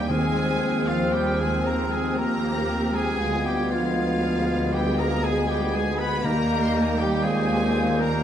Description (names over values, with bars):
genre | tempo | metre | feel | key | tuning
classical | 59 BPM | 3/4 | rubato | unclear | A4 = 440 Hz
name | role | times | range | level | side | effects
rich studio violin section | melody | 0.0-8.2 s | F5 to C6 | -33 LUFS | left 3 dB | none
clear chamber violin section | second line | 0.0-8.2 s | F5 to B5 | -35 LUFS | left 2 dB | none
silver concert flute | second line | 0.0-8.2 s | F6 to Ab6 | -34 LUFS | equal | none
warm clarinet | second line | 0.0-8.2 s | Bb3 to C4 | -33 LUFS | left 3 dB | none
dark bassoon | accompaniment | 0.0-8.2 s | C4 to G4 | -32 LUFS | right 2 dB | none
rich studio viola section | accompaniment | 0.0-8.2 s | Bb3 to Ab4 | -32 LUFS | right 1 dB | none
dark French horn section | sustained chords | 0.0-8.2 s | F3 to C4 | -30 LUFS | left 5 dB | none
bright trumpet | stabs | 0.0-8.2 s | F4 to B4 | -31 LUFS | right 2 dB | none
rich chamber double bass section | bass | 0.0-8.2 s | D2 to Eb2 | -30 LUFS | right 2 dB | none
warm chamber cello section | bass | 0.0-8.2 s | F3 to B3 | -30 LUFS | right 1 dB | none
warm tuba | bass | 0.0-8.2 s | D2 to Eb2 | -30 LUFS | right 2 dB | none
timpani | percussion | 0.1-7.7 s | Eb3 | -31 LUFS | left 1 dB | none
room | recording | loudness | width
wet recital hall reverb, RT60 1.5 s | dark, warm production | -21 LUFS | side -9 dB against mid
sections
0.0-8.2 A section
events
none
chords
0.1 Fm7/Eb; 3.2 Ddim7; 6.2 Eb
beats
| 0.10 1.14 2.18 | 3.21 4.23 5.24 | 6.24 7.25